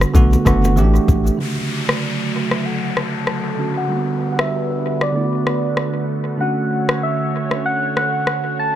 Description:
afrobeats; 96 BPM; 4/4; swing 58% on 16ths; D major; A4 = 438 Hz
bell-like tine electric piano; accompaniment; 0.0-8.8 s; C#3 to G4; -20 LUFS; right 3 dB; low-pass filter, analog delay
punchy sub bass; bass; 0.0-1.3 s; F#1 to B1; -15 LUFS; left 1 dB
afro-pop drum kit; drums; 0.0-8.4 s; kick drum, rim click, shaker; -20 LUFS; left 1 dB; analog delay
congas and bongos; percussion; 0.1-1.3 s; -28 LUFS; equal
soft struck synth lead; melody; 1.4-8.8 s; D5 to A5; -24 LUFS; equal; chorus, phaser, low-pass filter, analog delay
lush unison pad; sustained chords; 1.4-8.8 s; D3 to C#5; -26 LUFS; equal; chorus, phaser, low-pass filter
downlifter; sound effects; 1.4-6.4 s; -29 LUFS; left 3 dB
light reverb; echo-heavy mix; -16 LUFS; side -11 dB against mid
0.0-1.4 A section; 1.4-8.8 B section
filter sweep 1.4-8.8
0.1 Bm7; 0.8 A7sus4; 1.4 Dmaj7; 3.9 Gmaj7; 5.1 Bm7; 6.4 Dmaj7

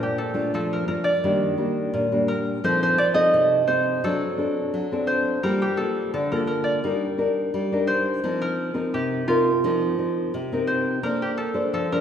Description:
samba; 86 BPM; 4/4; straight; A4 = 437 Hz
concert harp; melody; 0.0-12.0 s; F4 to Eb5; -24 LUFS; right 2 dB
nylon-string guitar; accompaniment; 0.0-12.0 s; Bb2 to C5; -24 LUFS; left 2 dB
wet recital hall reverb, RT60 1.8 s; recorded in a church or concert hall; -21 LUFS; side -8 dB against mid
0.0-12.0 A section
0.0 Bbmaj7; 1.2 Ebmaj7; 2.6 F7; 4.0 D7/F#; 5.4 Gm9; 6.8 Cm9/G; 8.2 F7sus4; 11.0 Bbmaj9

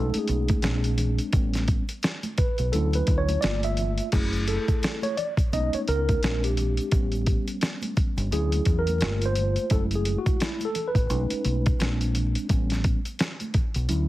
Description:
hip hop, jazz-hop; 86 BPM; 4/4; swing 59% on 16ths; A4 = 440 Hz
mellow tine electric piano; accompaniment; 0.0-14.1 s; F#3 to E5; -28 LUFS; equal; medium stereo tremolo
deep dub fingered electric bass; bass; 0.0-14.1 s; F#1 to E2; -26 LUFS; equal
dusty soul sampler-style drum kit; drums; 0.1-14.1 s; crash cymbal, hi-hat, kick drum, snare drum; -26 LUFS; equal
congas and egg shaker; percussion; 0.1-14.1 s; -39 LUFS; right 3 dB
digital ambience; heavily compressed radio sound, vinyl crackle; -22 LUFS; side -16 dB against mid
0.0-4.1 A section; 4.1-14.1 A section
tine electric piano solo 0.0-4.1, 4.1-14.1
0.0 B13; 0.6 A#9; 1.3 A9; 2.7 Dmaj9; 3.4 Gm7; 4.1 F#m7; 5.5 B69; 6.2 A#9; 6.9 A9; 8.3 Dmaj9; 9.0 Gm7; 9.7 F#m7; 11.1 B13; 11.8 A#9; 12.5 A9

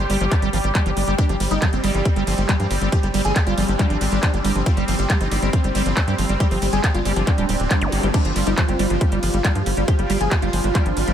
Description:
psychedelic trance; 138 BPM; 4/4; straight; A4 = 440 Hz
supersaw stab; melody; 0.0-11.1 s; G3 to D5; -27 LUFS; equal; phaser, sidechain pumping, ping-pong delay
bubbling stepped-filter texture; sustained chords; 0.0-11.1 s; F3 to G4; -26 LUFS; right 1 dB; chorus, built-in reverb, vintage 12-bit sampler grit, sidechain pumping
liquid acid bass; riff; 0.0-11.1 s; F3 to Bb3; -25 LUFS; moving between left 4 dB and right 4 dB; chorus, auto-pan, vintage 12-bit sampler grit, sidechain pumping, ping-pong delay
tight sequencer bass; bass; 0.0-11.1 s; D1 to G2; -23 LUFS; equal
drum and bass drum kit; drums; 0.1-11.1 s; crash cymbal, handclaps, hi-hat, ride cymbal; -27 LUFS; equal
electronic kick drum; drums; 0.3-10.8 s; -19 LUFS; equal; overdrive
zap; sound effects; 7.8-7.9 s; -32 LUFS; equal
metallic wobble bass; second line; 8.9-11.1 s; F3 to C4; -37 LUFS; left 3 dB
light reverb, digital ambience; -17 LUFS; side -9 dB against mid
0.0-11.1 A section
0.0 G5

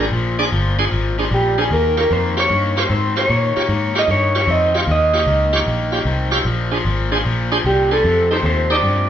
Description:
blues; 152 BPM; 4/4; swing 68% on 8ths; A4 = 440 Hz
electric guitar through a small old amp; melody; 0.0-9.1 s; G4 to F5; -17 LUFS; right 1 dB; spring reverb
bright tonewheel organ; accompaniment; 0.0-8.8 s; D4 to D5; -22 LUFS; right 3 dB; slow rotary speaker, overdrive
overdriven electric guitar; riff; 0.0-9.1 s; F2 to C4; -23 LUFS; left 4 dB
fingered electric bass; bass; 0.0-9.1 s; G1 to Bb2; -20 LUFS; equal
moderate large studio reverb, RT60 0.8 s; band playing live in one room, nothing above 7.5 kHz; -15 LUFS; side -10 dB against mid
0.0-9.1 A section
0.0 Bb9; 1.7 Eb9; 6.5 Bb9; 8.0 F9

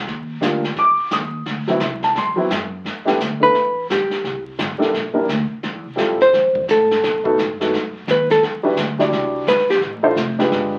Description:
jazz, small-group swing and bop; 172 BPM; 4/4; swing 63% on 8ths; G major; A4 = 441 Hz
upright bass; bass; 0.0-10.8 s; F1 to B2; -31 LUFS; equal
jazz brush drum kit; drums; 0.1-10.8 s; brushed snare drum, hi-hat, kick drum, snare drum; -28 LUFS; equal
dark baby grand piano; accompaniment; 0.4-10.8 s; F#3 to Eb6; -20 LUFS; equal
hollow-body jazz guitar; melody; 3.4-9.8 s; G4 to C5; -17 LUFS; equal
wet small room reverb, RT60 0.5 s; very old 78 rpm record, vinyl crackle; -19 LUFS; mono
0.0-2.8 A section; 2.8-10.8 A section
hollow-body jazz guitar solo 2.8-10.8
0.1 Ebmaj9; 1.5 D13; 2.8 G69; 4.2 C9; 5.6 Fmaj9; 7.0 B7; 8.4 Em7; 9.8 Dm9

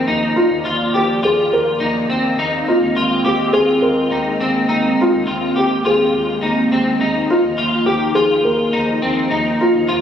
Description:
dream pop; 104 BPM; 4/4; straight; Eb major; A4 = 440 Hz
hollow soft pad; sustained chords; 0.0-10.0 s; F3 to D5; -20 LUFS; right 1 dB; chorus, shimmer reverb
electric guitar at the edge of break-up; arpeggios; 0.0-10.0 s; C4 to G4; -19 LUFS; left 2 dB; ensemble chorus, shimmer reverb, tape echo
round analog bass; bass; 0.0-10.0 s; Eb2; -30 LUFS; equal
felt-muted upright piano; melody; 0.4-10.0 s; F4 to Bb4; -18 LUFS; equal; shimmer reverb, tape echo
moderate concert hall reverb, RT60 2.2 s; recorded on a phone in the room, club reverb, compression, nothing above 10.5 kHz; -14 LUFS; side -8 dB against mid
0.0-10.0 A section
0.0 Ebsus2; 2.4 Abadd9/Eb; 7.0 Ebsus2

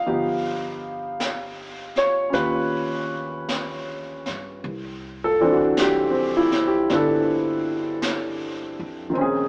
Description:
jazz ballad; 53 BPM; 4/4; swing 68% on 8ths; C major from 4.6 s; A4 = 441 Hz
warm grand piano; accompaniment; 0.0-9.5 s; Eb3 to F5; -24 LUFS; equal
upright bass; bass; 0.0-9.5 s; G1 to G2; -38 LUFS; equal
jazz brush drum kit; drums; 0.1-9.5 s; brushed snare drum, hi-hat, snare drum; -34 LUFS; equal
moderate stone room reverb, RT60 1.0 s; band playing live in one room, small speaker sound, faint mains hum; -23 LUFS; mono
0.0-4.6 A section; 4.6-9.5 B section
0.1 Gaug7; 4.6 C69

